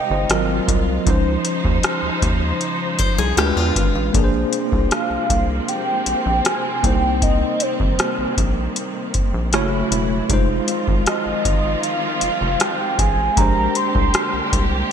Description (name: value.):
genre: contemporary R&B.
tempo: 78 BPM.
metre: 4/4.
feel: straight.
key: unclear.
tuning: A4 = 437 Hz.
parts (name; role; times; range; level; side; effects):
tine electric piano; accompaniment; 0.0-14.9 s; F3 to G5; -23 LUFS; equal; medium stereo tremolo.
dark studio string section; sustained chords; 0.0-14.9 s; C3 to C5; -26 LUFS; right 1 dB; none.
rubbery square bass; bass; 0.1-14.8 s; Fb1 to Fb2; -22 LUFS; equal; none.
booming analog drum machine; drums; 0.3-14.7 s; hi-hat, kick drum, rim click; -20 LUFS; equal; gated reverb.
picked steel-string acoustic guitar; arpeggios; 3.0-4.1 s; F4 to C5; -24 LUFS; left 7 dB; digital delay.
warm velvety synth lead; melody; 4.9-14.9 s; C5 to C6; -22 LUFS; right 1 dB; chorus, tremolo.
room: light reverb, digital ambience.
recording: bright 1980s-style digital production.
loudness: -17 LUFS.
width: side -8 dB against mid.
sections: 0.0-4.1 A section; 4.1-14.9 B section.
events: none.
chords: 0.3 Ab13; 1.1 Dbmaj9; 3.4 Ddim7; 4.1 Bb9; 6.8 Cm7; 9.5 Gbm7; 10.3 Fm7; 13.4 Bb13.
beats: 0.30 | 1.07 1.84 2.60 3.37 | 4.14 4.91 5.68 6.45 | 7.22 7.99 8.76 9.53 | 10.30 11.07 11.84 12.61 | 13.37 14.14 14.91.